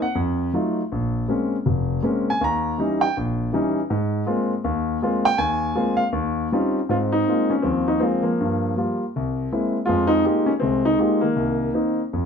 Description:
solo jazz; 161 BPM; 4/4; swing 63% on 8ths, rubato; Ab major; A4 = 442 Hz
warm concert grand piano; solo; 0.0-12.3 s; F1 to Bb5; -20 LUFS; left 1 dB
moderate club reverb, RT60 0.9 s; -20 LUFS; side -6 dB against mid
0.0-6.9 A section; 6.9-12.3 B section
grand piano solo 0.0-6.9
0.2 F7b9; 0.9 Bbm9; 2.4 Eb7b9; 3.9 Ab69; 6.1 Eb13; 6.9 Ab69; 8.4 Gm7; 9.1 C7b13; 9.9 Fm11; 11.4 Cm7
0.16 0.55 | 0.93 1.30 1.68 2.06 | 2.43 2.80 3.17 3.54 | 3.91 4.28 4.65 5.02 | 5.39 5.76 6.13 6.52 | 6.91 7.28 7.65 8.03 | 8.40 8.78 9.14 9.51 | 9.88 10.25 10.62 10.98 | 11.35 11.73 12.11

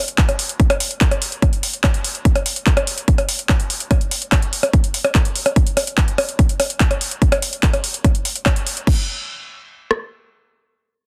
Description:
trance; 145 BPM; 4/4; straight
techno drum kit; drums; 0.1-9.0 s; crash cymbal, handclaps, hi-hat, percussion blips; -22 LUFS; equal
techno drum kit; drums; 0.2-10.0 s; kick drum, rim click; -18 LUFS; equal; soft clipping on snare
little or no reverb; dense, heavily limited modern master; -18 LUFS; mono
0.0-8.9 A section; 8.9-11.1 B section
0.18 | 0.60 1.01 1.42 1.84 | 2.25 2.67 3.08 3.49 | 3.91 4.32 4.74 5.15 | 5.56 5.98 6.39 6.80 | 7.22 7.63 8.04 8.46 | 8.87 9.29 9.70

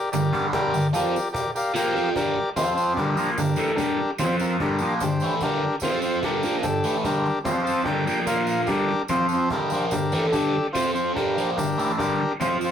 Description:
garage rock duo or trio; 147 BPM; 4/4; straight; G minor; A4 = 440 Hz
combo organ; sustained chords; 0.0-12.7 s; Bb3 to A5; -24 LUFS; left 1 dB
crunchy overdriven guitar; riff; 0.1-12.7 s; G2 to F4; -24 LUFS; equal; phaser
cajon; drums; 0.1-12.7 s; -35 LUFS; right 1 dB
tambourine; percussion; 0.1-12.7 s; -40 LUFS; right 6 dB
moderate studio reverb, RT60 0.6 s; rough rehearsal-room recording, warm saturation; -21 LUFS; side -9 dB against mid
0.0-2.2 A section; 2.2-12.7 B section
transistor combo organ fill 1.4-2.2, 7.5-8.7; kick and snare drop out 1.8-2.2
0.0 Gm; 2.6 F5; 3.0 Gm; 4.2 F5; 4.6 Gm; 5.8 F5; 6.2 Gm; 7.5 F5; 7.9 Gm; 8.3 Bb5; 8.7 Gm; 9.1 F5; 9.5 Gm; 10.8 F5; 11.2 Gm
0.14 | 0.54 0.95 1.35 1.76 | 2.16 2.57 2.97 3.38 | 3.79 4.19 4.60 5.00 | 5.41 5.82 6.23 6.64 | 7.05 7.46 7.87 8.28 | 8.69 9.10 9.51 9.93 | 10.34 10.75 11.16 11.58 | 11.99 12.41

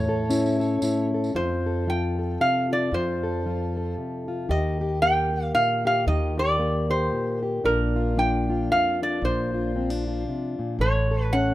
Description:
acoustic folk duo or small band; 114 BPM; 3/4; swing 59% on 8ths; F mixolydian; A4 = 440 Hz
metal-body resonator slide guitar; melody; 0.0-11.5 s; Bb4 to G5; -25 LUFS; right 1 dB; plate reverb
fingerpicked plugged-in steel-string acoustic guitar; accompaniment; 0.0-11.5 s; F2 to A4; -26 LUFS; left 2 dB; plate reverb
upright bass; bass; 0.0-11.5 s; A1 to F2; -28 LUFS; equal
tambourine; percussion; 0.3-1.3 s; -40 LUFS; right 3 dB
moderate small room reverb, RT60 0.5 s; rough home demo mix; -22 LUFS; side -15 dB against mid
0.0-1.4 A section; 1.4-11.5 B section
0.0 A; 1.4 F; 4.5 Eb; 7.6 Bb; 10.8 A
0.30 0.83 | 1.35 1.88 2.40 | 2.92 3.45 3.97 | 4.50 5.02 5.55 | 6.07 6.60 7.12 | 7.65 8.17 8.70 | 9.22 9.75 10.28 | 10.80 11.32

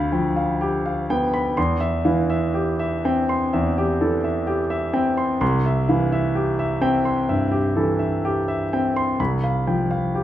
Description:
classical, romantic nocturne for solo piano; 63 BPM; 4/4; rubato; C major from 5.4 s; A4 = 441 Hz
warm grand piano; solo; 0.0-10.2 s; C2 to C6; -19 LUFS; equal
wet recital hall reverb, RT60 1.4 s; minimal, uncompressed stereo recording; -19 LUFS; side -12 dB against mid
0.0-10.2 A section
0.0 G7/D; 1.6 C/E; 5.4 C; 9.2 G7/C
0.61 | 1.57 2.55 3.54 4.47 | 5.42 6.34 7.27 8.23 | 9.19 10.14

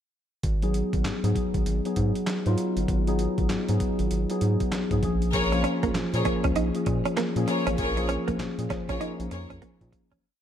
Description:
R&B, new jack swing; 98 BPM; 4/4; swing 62% on 16ths; G# dorian; A4 = 440 Hz
round analog bass; bass; 0.4-10.2 s; G1 to A#2; -27 LUFS; equal
boom bap sampler-style drum kit; drums; 0.4-10.2 s; handclaps, hi-hat, kick drum, snare drum; -31 LUFS; equal
mellow tine electric piano; accompaniment; 0.6-10.3 s; E#3 to G#4; -27 LUFS; left 2 dB; analog chorus
warm chamber string section; stabs; 5.3-9.5 s; E#4 to C#5; -30 LUFS; left 2 dB
direct-recorded clean electric guitar; riff; 5.5-10.2 s; A#3 to D#4; -31 LUFS; right 4 dB; wide subtle chorus
light reverb; -24 LUFS; side -10 dB against mid
0.4-10.2 verse
fade-out 7.8-10.2; drum fill 9.6-10.2
0.4 G#m7; 5.0 A#m7
| 0.43 1.05 1.66 2.27 | 2.88 3.50 4.11 4.72 | 5.33 5.95 6.56 7.17 | 7.78 8.39 9.01 9.62

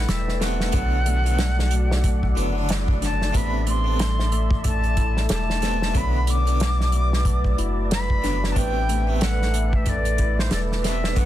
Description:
trip hop; 92 BPM; 4/4; swing 59% on 16ths; A dorian; A4 = 440 Hz
concert flute; melody; 0.0-11.3 s; C5 to D6; -28 LUFS; left 1 dB; dub echo
dark analog pad; sustained chords; 0.0-11.3 s; A3 to E5; -33 LUFS; right 1 dB; chorus, phaser, vintage 12-bit sampler grit
concert harp; arpeggios; 0.0-11.3 s; F#3 to A4; -32 LUFS; left 5 dB; tape echo
soft dub sub bass; bass; 0.0-11.3 s; E1 to B1; -23 LUFS; equal
wind-like tuned noise texture; texture; 0.0-11.3 s; D5; -39 LUFS; equal; built-in reverb
unplugged drum kit; drums; 0.1-11.3 s; hi-hat, kick drum, snare drum; -25 LUFS; equal; soft clipping on snare
harpsichord; accompaniment; 0.4-11.3 s; C3 to D4; -30 LUFS; right 1 dB; tremolo, tape echo
small room ambience; dense, heavily limited modern master; -19 LUFS; side -13 dB against mid
0.0-11.3 A section
0.0 Amadd9; 0.7 Bm; 3.3 Amadd9; 6.0 Bm; 8.6 Amadd9
0.08 | 0.73 1.39 2.04 2.69 | 3.34 3.99 4.65 5.30 | 5.95 6.60 7.25 7.91 | 8.56 9.21 9.86 10.52 | 11.17

